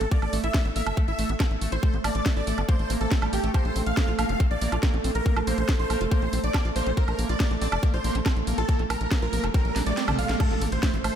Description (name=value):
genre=psychedelic trance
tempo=140 BPM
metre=4/4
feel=straight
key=unclear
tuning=A4 = 440 Hz
part: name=dense compressed supersaw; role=melody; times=0.0-11.2 s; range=G4 to F5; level=-31 LUFS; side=right 1 dB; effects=phaser, sidechain pumping, analog delay
part: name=evolving wavetable pad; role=sustained chords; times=0.0-11.2 s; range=A3 to A4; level=-32 LUFS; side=right 4 dB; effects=chorus, built-in reverb, sidechain pumping
part: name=liquid acid bass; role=riff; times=0.0-11.2 s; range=G3 to F4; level=-34 LUFS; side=moving between left 4 dB and right 4 dB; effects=chorus, auto-pan, sidechain pumping, tape echo
part: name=tight sequencer bass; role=bass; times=0.0-11.1 s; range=F1 to Bb1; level=-28 LUFS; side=equal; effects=tube saturation
part: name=garage drum kit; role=drums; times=0.0-11.1 s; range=crash cymbal, hi-hat, snare drum, toms, woodblock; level=-32 LUFS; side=right 1 dB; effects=overdrive
part: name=electronic kick drum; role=drums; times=0.1-10.9 s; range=none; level=-23 LUFS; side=equal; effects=overdrive
part: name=riser and impact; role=sound effects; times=8.9-11.2 s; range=none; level=-36 LUFS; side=right 1 dB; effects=none
room=light reverb, digital ambience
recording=none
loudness=-22 LUFS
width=side -9 dB against mid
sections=0.0-10.4 A section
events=riser 8.9-10.4; drum fill 9.8-10.4; kick drops out 10.0-10.4; impact 10.4-11.2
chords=0.0 A5; 3.5 Bb5; 10.4 A5